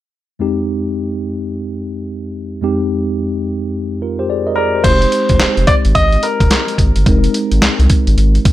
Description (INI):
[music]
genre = R&B, new jack swing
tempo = 108 BPM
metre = 4/4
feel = swing 63% on 16ths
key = F minor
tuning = A4 = 440 Hz
[part]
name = mellow tine electric piano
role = accompaniment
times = 0.4-8.5 s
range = F2 to Eb5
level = -18 LUFS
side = equal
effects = slow stereo tremolo
[part]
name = clear concert grand piano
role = melody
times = 4.6-6.7 s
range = Bb4 to Eb5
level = -16 LUFS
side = equal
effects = digital delay
[part]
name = round analog bass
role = bass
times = 4.8-8.4 s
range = F1 to C2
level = -13 LUFS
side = equal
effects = none
[part]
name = dusty soul sampler-style drum kit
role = drums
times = 4.8-8.5 s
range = crash cymbal, handclaps, hi-hat, kick drum, snare drum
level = -14 LUFS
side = equal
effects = gated reverb
[sound]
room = digital ambience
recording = none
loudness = -12 LUFS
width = side -14 dB against mid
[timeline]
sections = 0.4-4.8 A section; 4.8-8.5 B section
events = none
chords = 0.4 Fm9